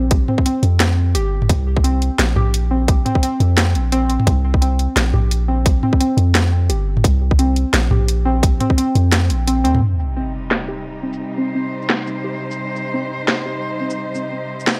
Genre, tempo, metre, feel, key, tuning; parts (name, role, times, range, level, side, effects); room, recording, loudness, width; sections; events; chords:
half-time drum and bass; 173 BPM; 4/4; swing 56% on 16ths, half-time; C minor; A4 = 442 Hz
warbly dusty pluck; arpeggios; 0.0-14.8 s; C4 to G4; -25 LUFS; equal; lush chorus, cassette tape, tape echo
long sustained 808-style bass; bass; 0.0-9.8 s; G1 to F2; -19 LUFS; equal; tube saturation
drum and bass drum kit; drums; 0.1-14.8 s; hi-hat, shaker, snare drum, toms; -22 LUFS; equal; overdrive, low-pass filter on hats, studio reverb, low-pass filter on snare, low-pass filter on toms, low-pass filter on perc
electronic kick drum; drums; 0.1-8.8 s; -18 LUFS; equal; overdrive, studio reverb
rich studio cello section; sustained chords; 9.8-14.8 s; C3 to C5; -28 LUFS; equal; sidechain pumping
sub drop; sound effects; 9.8-11.2 s; -25 LUFS; equal
metallic inharmonic drone; texture; 10.3-14.8 s; Eb4; -33 LUFS; equal; chorus, built-in reverb
little or no reverb; dry, gritty hardware recording; -18 LUFS; mono
0.0-9.8 A section; 9.8-14.8 B section
kick drops out 9.1-9.8; impact 9.8-11.2; filter sweep on drum 9.8-14.8; filter sweep on synth pluck 9.8-14.8
0.0 C5; 9.8 Cm